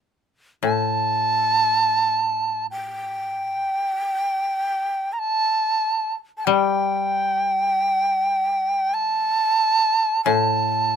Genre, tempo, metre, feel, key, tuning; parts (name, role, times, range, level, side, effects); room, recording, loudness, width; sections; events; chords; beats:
japanese traditional, Japanese chamber music; free time; A4 = 440 Hz
bright reedy shakuhachi; melody; 0.6-11.0 s; G5 to Bb5; -20 LUFS; right 1 dB
koto; accompaniment; 0.6-11.0 s; A2 to G3; -24 LUFS; left 7 dB
little or no reverb; close, detailed microphones; -19 LUFS; side -7 dB against mid
0.0-11.0 A section
slowing down 7.3-11.0
free time